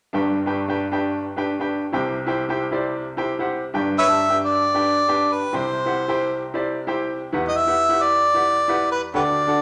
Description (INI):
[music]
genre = soul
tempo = 133 BPM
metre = 4/4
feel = straight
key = G major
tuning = A4 = 440 Hz
[part]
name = bright upright piano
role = accompaniment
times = 0.1-9.6 s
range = G1 to A5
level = -25 LUFS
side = equal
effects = none
[part]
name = warm harmonica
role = melody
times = 4.0-9.6 s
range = G4 to E5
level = -21 LUFS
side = equal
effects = none
[sound]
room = moderate large studio reverb, RT60 1.2 s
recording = none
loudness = -21 LUFS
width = mono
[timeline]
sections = 0.1-3.7 A section; 3.7-9.6 B section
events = none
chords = 0.1 G; 1.9 C; 3.7 G; 5.5 C; 7.3 Emadd9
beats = | 0.14 0.59 1.04 1.49 | 1.94 2.38 2.83 3.28 | 3.73 4.18 4.63 5.08 | 5.54 5.99 6.44 6.89 | 7.34 7.79 8.24 8.69 | 9.14 9.59